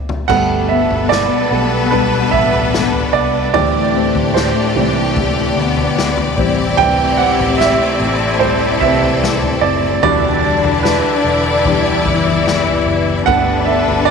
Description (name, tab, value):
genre	pop ballad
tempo	74 BPM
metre	4/4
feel	straight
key	G major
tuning	A4 = 440 Hz
part	warm grand piano	accompaniment	0.0-14.1 s	C3 to G5	-16 LUFS	right 10 dB	none
part	unplugged drum kit	drums	0.1-14.1 s	crash cymbal, kick drum, snare drum, toms	-23 LUFS	left 2 dB	none
part	warm studio cello section	second line	0.3-14.1 s	A2 to E4	-19 LUFS	left 8 dB	none
part	bright studio string section	sustained chords	0.3-14.1 s	D3 to D5	-19 LUFS	left 1 dB	none
part	fingerpicked steel-string acoustic guitar	arpeggios	0.3-14.1 s	E2 to A4	-22 LUFS	left 9 dB	none
part	vintage muted fingered electric bass	bass	0.3-14.1 s	E1 to D2	-23 LUFS	equal	none
room	wet echo chamber reverb, RT60 2.3 s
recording	1960s-style stereo with parts hard left and right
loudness	-12 LUFS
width	side -5 dB against mid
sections	0.3-14.1 A section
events	drum fill 0.0; stop 0.0; grand piano solo 0.3-14.1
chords	0.3 Gadd9; 3.5 D7sus4; 6.4 Am7; 10.0 Em7; 13.3 Gadd9